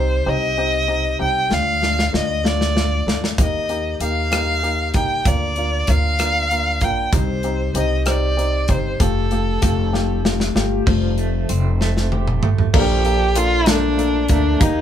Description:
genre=six-eight pop ballad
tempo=64 BPM (dotted quarters)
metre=6/8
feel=straight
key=Bb major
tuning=A4 = 440 Hz
part: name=dark violin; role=melody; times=0.0-14.8 s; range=D4 to G5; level=-21 LUFS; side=equal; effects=none
part: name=warm upright piano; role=accompaniment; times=0.0-14.8 s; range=F3 to A4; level=-24 LUFS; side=left 4 dB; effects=none
part: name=upright bass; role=bass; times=0.0-14.8 s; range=F1 to Eb2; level=-22 LUFS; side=equal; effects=none
part: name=modern studio drum kit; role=drums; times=1.5-14.8 s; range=crash cymbal, hi-hat, kick drum, rim click, snare drum, toms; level=-20 LUFS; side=right 1 dB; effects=none
part: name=direct-recorded clean electric guitar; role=arpeggios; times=10.9-14.8 s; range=F3 to G4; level=-27 LUFS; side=right 6 dB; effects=tremolo
room=light reverb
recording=band playing live in one room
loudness=-16 LUFS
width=side -10 dB against mid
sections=0.0-10.9 A section; 10.9-12.7 B section; 12.7-14.8 C section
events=drum fill 1.5-3.4, 9.9-10.9, 11.8-12.7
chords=0.0 Cm; 1.5 Dm; 3.4 Eb; 5.3 Bb/D; 7.1 Cm; 9.0 Fadd9; 12.7 Bbmaj7

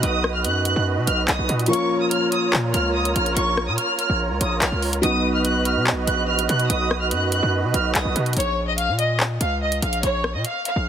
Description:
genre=hip hop, drill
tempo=144 BPM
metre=4/4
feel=half-time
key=Bb phrygian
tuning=A4 = 441 Hz
part: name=clear chamber violin section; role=melody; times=0.0-10.8 s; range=Db5 to F#6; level=-24 LUFS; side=equal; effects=low-pass filter
part: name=dark concert grand piano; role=accompaniment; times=0.0-8.4 s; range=F3 to F#4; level=-26 LUFS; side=left 1 dB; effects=low-pass filter
part: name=musette accordion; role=sustained chords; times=0.0-8.3 s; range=F4 to B5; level=-26 LUFS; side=right 7 dB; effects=none
part: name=distorted 808-style bass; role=bass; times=0.0-10.9 s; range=Bb1 to B2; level=-24 LUFS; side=left 1 dB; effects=distortion
part: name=drill drum kit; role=drums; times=0.0-10.8 s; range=handclaps, hi-hat, rim click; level=-24 LUFS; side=left 1 dB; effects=none
room=light reverb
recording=heavily compressed radio sound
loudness=-19 LUFS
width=side -9 dB against mid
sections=0.0-8.4 A section; 8.4-10.9 B section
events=kick muted 1.7-2.5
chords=0.0 B; 1.7 Bbm; 5.0 B; 8.4 Bbm

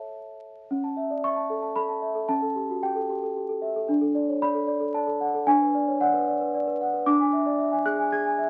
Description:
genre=classical, lullaby for celesta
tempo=113 BPM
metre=3/4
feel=straight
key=A major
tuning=A4 = 439 Hz
part: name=celesta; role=solo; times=0.0-8.5 s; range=C#4 to G#6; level=-26 LUFS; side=equal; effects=none
room=moderate studio reverb, RT60 0.5 s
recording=very old 78 rpm record, vinyl crackle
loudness=-25 LUFS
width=mono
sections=0.7-8.5 A section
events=none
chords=0.0 A; 0.7 A/C#; 2.3 A7/C#; 3.9 D; 5.5 Bm/D; 7.1 E7/D

